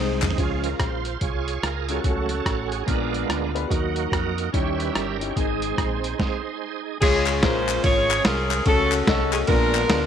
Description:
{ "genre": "uptempo gospel", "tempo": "145 BPM", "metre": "4/4", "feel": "swing 62% on 8ths", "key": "Db major", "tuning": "A4 = 440 Hz", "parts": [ { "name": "warm saxophone section", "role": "melody", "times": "0.0-0.2, 7.0-10.1 s", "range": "Db4 to Db5", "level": "-22 LUFS", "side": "equal", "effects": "tape echo" }, { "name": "clear upright piano", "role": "accompaniment", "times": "0.0-10.1 s", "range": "Ab2 to Eb5", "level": "-28 LUFS", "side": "left 12 dB", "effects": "none" }, { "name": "bright tonewheel organ", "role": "sustained chords", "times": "0.0-10.1 s", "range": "F3 to Fb5", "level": "-28 LUFS", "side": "right 11 dB", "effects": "slow rotary speaker, chorus vibrato" }, { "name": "deep dub fingered electric bass", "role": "bass", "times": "0.0-10.1 s", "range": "G1 to F2", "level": "-29 LUFS", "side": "equal", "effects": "none" }, { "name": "boom bap sampler-style drum kit", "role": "drums", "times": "0.2-10.0 s", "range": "crash cymbal, hi-hat, kick drum, ride cymbal, rim click, snare drum, toms", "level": "-24 LUFS", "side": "equal", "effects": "none" }, { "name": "group handclap", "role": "percussion", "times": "0.2-0.3, 7.3-9.8 s", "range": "none", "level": "-29 LUFS", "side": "left 13 dB", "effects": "none" } ], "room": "light reverb", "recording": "1960s-style stereo with parts hard left and right", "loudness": "-20 LUFS", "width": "side -8 dB against mid", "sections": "0.4-7.0 A section; 7.0-10.1 B section", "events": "drum fill 0.0-0.4; tonewheel organ solo 0.4-7.0; stop 6.2-7.0", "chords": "0.4 Db; 2.0 Gbm/Db; 2.9 Bb7b9; 3.7 Ebm; 4.5 Eb7b9; 5.4 Ab; 7.0 Db; 8.7 Gbm/Db; 9.5 Bb7b9" }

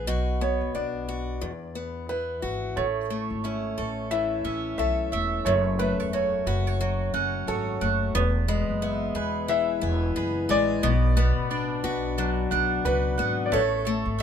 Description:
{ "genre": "acoustic pop", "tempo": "89 BPM", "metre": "4/4", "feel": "swing 60% on 16ths", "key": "A major", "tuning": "A4 = 440 Hz", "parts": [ { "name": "warm upright piano", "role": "melody", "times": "0.0-14.2 s", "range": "A4 to E5", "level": "-28 LUFS", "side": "equal", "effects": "none" }, { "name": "picked acoustic archtop guitar", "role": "accompaniment", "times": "0.0-14.2 s", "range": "E2 to A4", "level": "-28 LUFS", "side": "left 4 dB", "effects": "none" }, { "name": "upright bass", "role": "bass", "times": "0.0-14.2 s", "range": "E1 to E2", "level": "-28 LUFS", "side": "right 1 dB", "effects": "none" }, { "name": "mandolin", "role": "arpeggios", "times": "2.8-14.2 s", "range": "A3 to G#5", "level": "-32 LUFS", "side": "right 9 dB", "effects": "none" } ], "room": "light reverb", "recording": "minimal, uncompressed stereo recording", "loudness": "-23 LUFS", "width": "side -8 dB against mid", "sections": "0.0-2.8 A section; 2.8-13.5 B section", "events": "none", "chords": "0.1 Bm; 1.4 Esus2; 2.8 A; 5.5 F#m; 10.8 Bm; 13.5 A" }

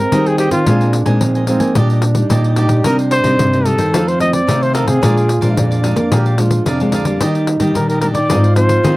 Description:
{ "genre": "samba and choro", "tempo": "110 BPM", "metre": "4/4", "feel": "straight", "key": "Eb major", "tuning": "A4 = 440 Hz", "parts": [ { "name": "mellow trumpet", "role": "melody", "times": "0.0-9.0 s", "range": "F4 to Eb5", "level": "-17 LUFS", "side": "equal", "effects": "none" }, { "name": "breathy trombone", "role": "second line", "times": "0.0-9.0 s", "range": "C4 to G4", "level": "-21 LUFS", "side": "right 3 dB", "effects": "none" }, { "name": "nylon-string guitar", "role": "accompaniment", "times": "0.0-9.0 s", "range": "F2 to Eb4", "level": "-20 LUFS", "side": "left 2 dB", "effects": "none" }, { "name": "nylon-string guitar", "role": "bass", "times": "0.0-9.0 s", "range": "Ab2 to Bb3", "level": "-15 LUFS", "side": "equal", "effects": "none" }, { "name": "cavaquinho", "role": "accompaniment", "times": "0.1-9.0 s", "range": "D4 to Ab5", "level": "-26 LUFS", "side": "right 3 dB", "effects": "none" }, { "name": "pandeiro", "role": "percussion", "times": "0.1-9.0 s", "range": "none", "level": "-21 LUFS", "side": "left 3 dB", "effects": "none" } ], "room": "light reverb", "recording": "dry, close 1970s-style studio recording", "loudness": "-12 LUFS", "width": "side -19 dB against mid", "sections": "0.0-9.0 A section", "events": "none", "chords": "0.0 Abmaj7; 0.7 Bb9sus4; 1.8 Ebmaj7/Bb; 2.8 Cm7; 3.9 F7; 5.0 Bb7; 7.2 Ebmaj7; 8.3 Ab6" }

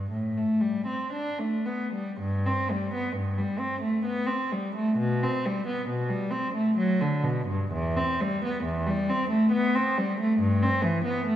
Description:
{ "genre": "classical, baroque-style suite movement for unaccompanied cello", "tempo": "66 BPM", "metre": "3/4", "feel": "uneven beats, rubato", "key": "G major", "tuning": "A4 = 440 Hz", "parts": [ { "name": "rich cello", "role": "solo", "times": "0.0-11.4 s", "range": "E2 to D4", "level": "-24 LUFS", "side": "equal", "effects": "none" } ], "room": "wet concert hall reverb, RT60 2.4 s", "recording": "recorded in a church or concert hall", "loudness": "-24 LUFS", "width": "side -11 dB against mid", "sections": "0.0-2.2 A section; 2.2-11.4 B section", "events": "none", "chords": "none" }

